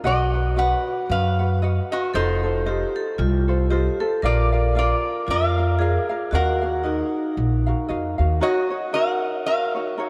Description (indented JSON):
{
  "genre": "Hawaiian",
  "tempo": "115 BPM",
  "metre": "4/4",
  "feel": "swing 57% on 8ths",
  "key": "Eb minor",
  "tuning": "A4 = 439 Hz",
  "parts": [
    { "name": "vibraphone with medium hard mallets", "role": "second line", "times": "0.0-10.1 s", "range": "Eb4 to Bb4", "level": "-29 LUFS", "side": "equal", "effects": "none" },
    { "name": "ukulele", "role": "accompaniment", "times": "0.0-10.1 s", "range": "Eb4 to F#5", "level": "-30 LUFS", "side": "equal", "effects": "none" },
    { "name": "upright bass", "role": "bass", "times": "0.0-8.4 s", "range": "F1 to F#2", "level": "-24 LUFS", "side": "equal", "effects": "none" },
    { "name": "lap resonator guitar", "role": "melody", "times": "0.1-10.0 s", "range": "Eb4 to F#5", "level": "-27 LUFS", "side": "equal", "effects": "none" }
  ],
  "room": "wet cathedral reverb, RT60 5.1 s",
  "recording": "in a vast, echoing space",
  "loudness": "-22 LUFS",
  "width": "mono",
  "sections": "0.0-8.4 A section; 8.4-10.1 A section",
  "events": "none",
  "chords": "0.0 B; 2.1 F7; 4.2 Bb; 6.3 Ebmadd9; 8.4 Ebm7"
}